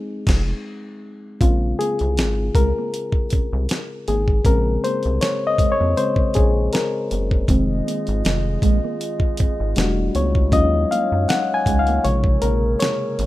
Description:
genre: R&B, neo-soul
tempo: 79 BPM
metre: 4/4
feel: swing 55% on 16ths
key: Bb minor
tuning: A4 = 440 Hz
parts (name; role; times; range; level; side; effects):
- bright reed electric piano; accompaniment; 0.0-13.3 s; C3 to Ab5; -22 LUFS; left 2 dB; none
- rubbery square bass; bass; 0.3-13.3 s; E1 to Gb2; -21 LUFS; equal; none
- dusty soul sampler-style drum kit; drums; 0.3-13.3 s; crash cymbal, hi-hat, kick drum, snare drum; -20 LUFS; equal; none
- mellow electric guitar; second line; 1.4-13.3 s; Ab3 to Db4; -29 LUFS; right 9 dB; phaser
- glass harmonica; sustained chords; 7.5-13.3 s; G3 to Eb5; -28 LUFS; right 3 dB; stereo widening
room: little or no reverb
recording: rough home demo mix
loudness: -17 LUFS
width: side -16 dB against mid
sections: 0.0-1.4 A section; 1.4-13.3 B section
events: band accent 0.0-1.4; reed electric piano solo 0.0-1.4, 1.4-13.3; break 0.6-1.4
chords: 0.0 Fm7; 1.4 Bbm9; 7.5 Fm7; 9.8 Em11; 10.5 Ebm11; 12.0 Bbm9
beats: 0.65 | 1.41 2.17 2.93 3.69 | 4.45 5.21 5.96 6.72 | 7.48 8.24 9.00 9.76 | 10.52 11.28 12.04 12.80

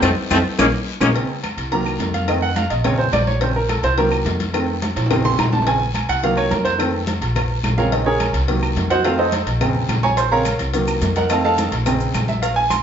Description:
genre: latin, salsa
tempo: 213 BPM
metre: 4/4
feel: straight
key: Bb minor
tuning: A4 = 440 Hz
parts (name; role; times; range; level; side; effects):
- bright trombone section; melody; 0.0-1.1 s; F3 to Db4; -19 LUFS; left 2 dB; none
- clear baritone saxophone; second line; 0.0-1.1 s; A3 to Bb3; -26 LUFS; left 5 dB; none
- clear concert grand piano; accompaniment; 0.0-12.8 s; Db3 to Db6; -19 LUFS; right 2 dB; none
- upright bass; bass; 0.0-12.8 s; Bb1 to F2; -22 LUFS; equal; none
- claves; percussion; 0.0-12.8 s; none; -32 LUFS; left 7 dB; none
- congas; percussion; 0.0-12.8 s; none; -28 LUFS; left 2 dB; none
- cowbell and bongos; percussion; 0.0-12.8 s; none; -27 LUFS; left 6 dB; none
- guiro; percussion; 0.0-12.8 s; none; -35 LUFS; left 6 dB; none
- maracas; percussion; 0.0-1.1, 10.2-12.8 s; none; -37 LUFS; right 6 dB; none
- timbales and agogo bells; percussion; 0.0-12.8 s; none; -28 LUFS; right 5 dB; none
room: wet large studio reverb, RT60 0.9 s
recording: band playing live in one room, nothing above 7.7 kHz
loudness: -16 LUFS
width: side -8 dB against mid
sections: 0.0-1.2 A section; 1.2-12.8 B section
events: band accent 0.0-1.2; drum fill 0.7-1.2, 5.0-5.7; grand piano solo 1.2-12.8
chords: 0.0 F7; 0.6 Bbm; 1.2 Abadd11; 1.7 Cm7b5; 2.3 F7; 2.9 Bbm7; 4.0 Cm7b5; 4.5 F7; 5.1 Bbm7; 6.2 Cm7b5; 6.8 F7; 7.4 Bbm7; 8.5 Cm7b5; 9.0 F7; 9.6 Bbm7; 10.7 Cm7b5; 11.3 F7; 11.9 Bbm7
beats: | 0.03 0.31 0.59 0.88 | 1.16 1.44 1.72 2.00 | 2.29 2.57 2.85 3.13 | 3.42 3.70 3.98 4.26 | 4.54 4.82 5.11 5.39 | 5.67 5.95 6.23 6.51 | 6.79 7.08 7.36 7.64 | 7.92 8.20 8.48 8.77 | 9.05 9.33 9.61 9.89 | 10.17 10.46 10.74 11.02 | 11.30 11.58 11.86 12.14 | 12.43 12.71

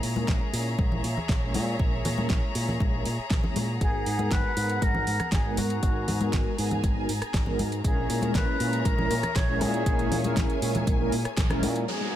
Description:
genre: nu-disco, nu disco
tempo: 119 BPM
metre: 4/4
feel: straight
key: unclear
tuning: A4 = 440 Hz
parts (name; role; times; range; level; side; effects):
- mellow synth brass; accompaniment; 0.0-12.2 s; G#3 to A#4; -32 LUFS; equal; chorus, sidechain pumping, ping-pong delay
- muted studio string section; sustained chords; 0.0-12.2 s; B3 to A#5; -35 LUFS; left 1 dB; sidechain pumping
- fingered electric bass with an envelope filter; bass; 0.0-11.8 s; G#1 to A#2; -30 LUFS; equal; none
- pop drum kit; drums; 0.0-12.1 s; hi-hat, rim click, snare drum, tambourine; -33 LUFS; right 1 dB; low-pass filter on hats, low-pass filter on snare, low-pass filter on perc
- congas; percussion; 0.2-11.7 s; none; -34 LUFS; left 3 dB; none
- electronic kick drum; drums; 0.3-11.5 s; none; -27 LUFS; equal; none
- mellow silver concert flute; melody; 3.8-12.2 s; F#4 to C#5; -32 LUFS; left 1 dB; vintage 12-bit sampler grit, ping-pong delay
- analog pluck; arpeggios; 11.9-12.2 s; F#3 to G#3; -35 LUFS; left 3 dB; chorus, phaser, sidechain pumping, ping-pong delay
- downlifter; sound effects; 11.9-12.2 s; none; -31 LUFS; right 1 dB; none
room: digital ambience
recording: none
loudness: -24 LUFS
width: side -12 dB against mid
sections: 0.0-11.9 A section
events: filter sweep on analog polysynth 0.0-11.9; band accent 11.4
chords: 0.0 A#m7b5; 3.8 G#m9; 7.8 A#m7b5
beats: 0.28 0.79 1.29 | 1.80 2.30 2.81 3.31 | 3.81 4.32 4.82 5.33 | 5.83 6.33 6.84 7.34 | 7.85 8.35 8.86 9.36 | 9.86 10.37 10.87 11.38 | 11.88

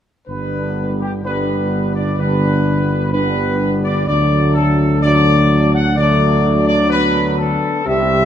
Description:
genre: classical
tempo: 63 BPM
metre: 4/4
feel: straight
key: G major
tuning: A4 = 440 Hz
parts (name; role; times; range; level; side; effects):
- warm trumpet section; melody; 0.3-8.2 s; G4 to F#5; -18 LUFS; left 1 dB; none
- mellow French horn section; sustained chords; 0.3-8.2 s; A3 to G4; -21 LUFS; left 4 dB; none
- warm trombone section; sustained chords; 0.3-8.2 s; C3 to G3; -21 LUFS; right 1 dB; none
- dark tuba; bass; 0.3-8.2 s; G1 to D2; -18 LUFS; right 2 dB; none
room: wet scoring stage reverb, RT60 1.9 s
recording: none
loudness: -13 LUFS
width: side -9 dB against mid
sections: 0.3-8.2 A section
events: none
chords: 0.3 G; 4.1 D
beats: | 0.28 1.24 2.18 3.12 | 4.07 5.04 5.97 6.90 | 7.87

